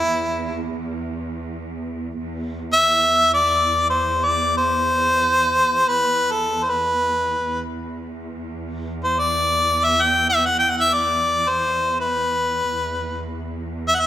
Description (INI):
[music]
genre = Turkish makam ensemble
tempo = free time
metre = none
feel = none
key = unclear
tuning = A4 = 439 Hz
[part]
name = clear harmonica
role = melody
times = 0.0-14.1 s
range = E4 to G5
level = -17 LUFS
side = left 1 dB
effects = none
[part]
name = rich symphonic cello section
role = drone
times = 0.0-14.1 s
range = E2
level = -28 LUFS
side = right 2 dB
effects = none
[sound]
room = moderate scoring stage reverb, RT60 2.2 s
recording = none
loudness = -18 LUFS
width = side -12 dB against mid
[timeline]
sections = 0.0-2.2 A section; 2.2-14.1 A section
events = none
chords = none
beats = free time